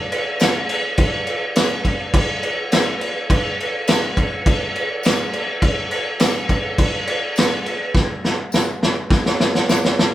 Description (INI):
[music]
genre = rock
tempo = 103 BPM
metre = 4/4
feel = straight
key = none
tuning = none
[part]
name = vintage drum kit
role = drums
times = 0.1-10.1 s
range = crash cymbal, kick drum, snare drum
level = -17 LUFS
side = equal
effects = none
[part]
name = tambourine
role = percussion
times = 0.4-9.8 s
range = none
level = -33 LUFS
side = left 3 dB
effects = none
[sound]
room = light reverb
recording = band playing live in one room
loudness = -17 LUFS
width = side -14 dB against mid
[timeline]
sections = 0.0-10.1 A section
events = drum fill 7.9-10.1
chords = none